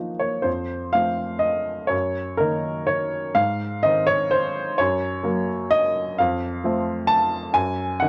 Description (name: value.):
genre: neoclassical minimalist piano.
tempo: 118-132 BPM.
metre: 3/4.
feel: rubato.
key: unclear.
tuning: A4 = 440 Hz.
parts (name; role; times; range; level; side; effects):
clear upright piano; solo; 0.0-8.1 s; F2 to A5; -23 LUFS; equal; none.
room: light reverb.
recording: cassette tape.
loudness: -23 LUFS.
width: mono.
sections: 0.5-8.1 A section.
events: none.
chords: 0.5 F; 1.9 Ebm7/Gb; 3.4 Ab6; 4.8 Gb; 6.2 F; 7.6 Ebm7/Gb.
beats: | 0.46 0.96 1.45 | 1.93 2.42 2.89 | 3.37 3.85 4.33 | 4.79 5.26 5.72 | 6.19 6.64 7.10 | 7.55 8.01.